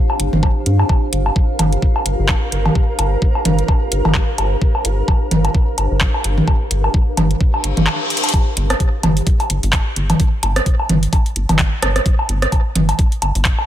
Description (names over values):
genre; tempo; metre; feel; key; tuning
minimal techno; 129 BPM; 4/4; swing 57% on 16ths; G minor; A4 = 445 Hz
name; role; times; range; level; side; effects
granular cloud pad; texture; 0.0-8.3 s; D4 to F5; -26 LUFS; equal; built-in reverb, sidechain pumping
booming analog drum machine; percussion; 0.1-13.7 s; rim click, toms, woodblock; -20 LUFS; right 1 dB; digital delay
rubbery square bass; bass; 0.2-13.5 s; G1 to G2; -18 LUFS; equal; sidechain pumping
garage drum kit; drums; 0.2-13.6 s; handclaps, hi-hat; -21 LUFS; equal; none
electronic kick drum; drums; 0.4-13.6 s; none; -15 LUFS; equal; none
flickering grainy texture; texture; 1.5-8.3 s; Bb4; -28 LUFS; right 2 dB; built-in reverb, sidechain pumping
reverse cymbal; sound effects; 7.6-8.3 s; none; -24 LUFS; left 4 dB; none
room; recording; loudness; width
little or no reverb; none; -14 LUFS; side -12 dB against mid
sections
0.0-8.3 A section; 8.3-13.7 B section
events
reverse cymbal 7.6-8.3; drum fill 8.1; drop 8.3-13.7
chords
0.0 Gm7; 8.3 N.C.